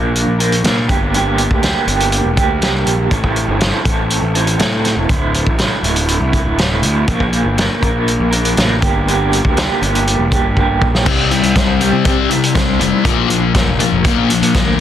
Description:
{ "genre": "quiet-loud alternative rock", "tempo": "121 BPM", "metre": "4/4", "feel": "straight", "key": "unclear", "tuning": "A4 = 441 Hz", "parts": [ { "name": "electric guitar through a small old amp", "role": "arpeggios", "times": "0.0-14.8 s", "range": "D2 to C5", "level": "-17 LUFS", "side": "right 2 dB", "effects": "tremolo, tape echo" }, { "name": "fuzz picked electric bass", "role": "bass", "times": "0.0-14.8 s", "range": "D1 to C3", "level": "-18 LUFS", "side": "equal", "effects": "overdrive" }, { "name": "loose indie drum kit", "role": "drums", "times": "0.2-14.7 s", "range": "crash cymbal, hi-hat, kick drum, snare drum", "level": "-16 LUFS", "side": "equal", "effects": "none" }, { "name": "thick fuzz guitar", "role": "riff", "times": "11.1-14.8 s", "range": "Bb2 to C4", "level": "-15 LUFS", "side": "left 11 dB", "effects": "distortion" } ], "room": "light reverb, studio ambience", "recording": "dense, heavily limited modern master", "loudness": "-12 LUFS", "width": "side -10 dB against mid", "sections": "0.0-11.1 A section; 11.1-14.8 B section", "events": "drum fill 10.6-11.1", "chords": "0.0 Bb; 0.9 Gm; 3.1 Am; 5.1 Dsus2; 7.1 Bb; 8.8 Gm; 11.1 C; 13.1 Bb6" }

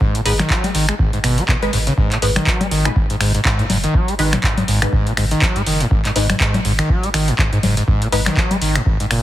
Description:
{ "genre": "acid house", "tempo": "122 BPM", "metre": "4/4", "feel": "swing 57% on 16ths", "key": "G# minor", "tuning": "A4 = 438 Hz", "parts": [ { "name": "overdriven acid bass", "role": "riff", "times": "0.0-9.2 s", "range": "G#1 to G#3", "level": "-19 LUFS", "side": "equal", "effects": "distortion, tube saturation, wide subtle chorus, sidechain pumping, ping-pong delay" }, { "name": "electronic kick drum", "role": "drums", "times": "0.0-9.0 s", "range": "none", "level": "-18 LUFS", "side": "equal", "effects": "none" }, { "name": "booming analog drum machine", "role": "drums", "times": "0.1-9.2 s", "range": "congas, finger snaps, handclaps, hi-hat", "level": "-20 LUFS", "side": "left 1 dB", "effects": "none" }, { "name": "filtered dub chord stab", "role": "stabs", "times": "0.3-8.2 s", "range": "G#3 to B4", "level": "-25 LUFS", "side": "left 2 dB", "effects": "phaser, lush chorus, ping-pong delay" }, { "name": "round analog bass", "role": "bass", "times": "0.3-9.2 s", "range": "F#1 to G#2", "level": "-22 LUFS", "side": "equal", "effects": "sidechain pumping" } ], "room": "light reverb, digital ambience", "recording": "heavily compressed radio sound, multiband compression", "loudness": "-14 LUFS", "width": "side -14 dB against mid", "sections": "0.0-9.2 A section", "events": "none", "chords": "0.0 G#m" }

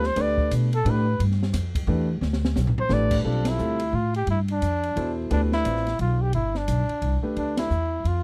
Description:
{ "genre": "modal jazz", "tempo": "175 BPM", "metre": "3/4", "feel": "swing 62% on 8ths", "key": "G mixolydian", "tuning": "A4 = 440 Hz", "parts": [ { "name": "breathy trumpet", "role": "melody", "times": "0.0-8.2 s", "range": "D4 to D5", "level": "-29 LUFS", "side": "equal", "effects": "none" }, { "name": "upright bass", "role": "bass", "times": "0.0-8.2 s", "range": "G1 to B2", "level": "-26 LUFS", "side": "equal", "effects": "none" }, { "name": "open jazz drum kit", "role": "drums", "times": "0.0-8.2 s", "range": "crash cymbal, hi-hat, kick drum, ride cymbal, snare drum, toms", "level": "-33 LUFS", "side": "equal", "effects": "none" }, { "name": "warm concert grand piano", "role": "accompaniment", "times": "0.2-7.7 s", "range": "B2 to D5", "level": "-31 LUFS", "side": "equal", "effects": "none" } ], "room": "little or no reverb", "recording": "dry, close 1970s-style studio recording", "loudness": "-24 LUFS", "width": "mono", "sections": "0.0-3.2 A section; 3.2-8.2 B section", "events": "trumpet solo 0.0-3.2; drum fill 2.2-2.9; band accent 3.4, 7.5", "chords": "0.0 G; 3.2 G7" }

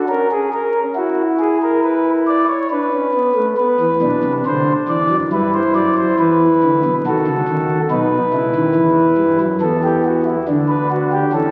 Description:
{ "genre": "classical, baroque-style 3-part fugue for pipe organ", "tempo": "69 BPM", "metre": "4/4", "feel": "straight", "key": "E minor", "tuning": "A4 = 440 Hz", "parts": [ { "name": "pipe organ, principal", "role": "solo", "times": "0.0-11.5 s", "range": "B1 to D5", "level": "-16 LUFS", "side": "equal", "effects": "none" } ], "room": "wet concert hall reverb, RT60 2.0 s", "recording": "very old 78 rpm record, vinyl crackle", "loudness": "-16 LUFS", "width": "mono", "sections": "0.0-3.6 A section; 3.6-11.5 B section", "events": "none", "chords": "0.1 A#dim/C#; 1.8 Bm; 3.6 E5/B; 5.3 Em; 7.0 D#dim; 8.8 Em; 10.5 Bm/D" }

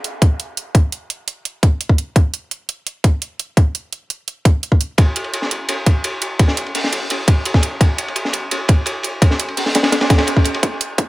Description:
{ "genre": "drum and bass", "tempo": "170 BPM", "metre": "4/4", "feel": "straight", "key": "none", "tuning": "none", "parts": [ { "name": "electronic hi-hat", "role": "drums", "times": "0.0-11.1 s", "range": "none", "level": "-23 LUFS", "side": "right 5 dB", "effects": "overdrive" }, { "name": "electronic kick drum", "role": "drums", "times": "0.2-11.1 s", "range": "none", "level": "-12 LUFS", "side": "equal", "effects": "overdrive, high-pass filter on kick" }, { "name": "crunchy breakbeat drum kit", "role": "drums", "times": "5.0-10.6 s", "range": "hi-hat, ride cymbal, snare drum", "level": "-19 LUFS", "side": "equal", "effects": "high-pass filter on cymbals, high-pass filter on hats, high-pass filter on snare, high-pass filter on room, dub echo" } ], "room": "studio reverb", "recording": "echo-heavy mix", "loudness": "-15 LUFS", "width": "side -18 dB against mid", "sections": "0.0-10.6 A section", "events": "none", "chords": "none" }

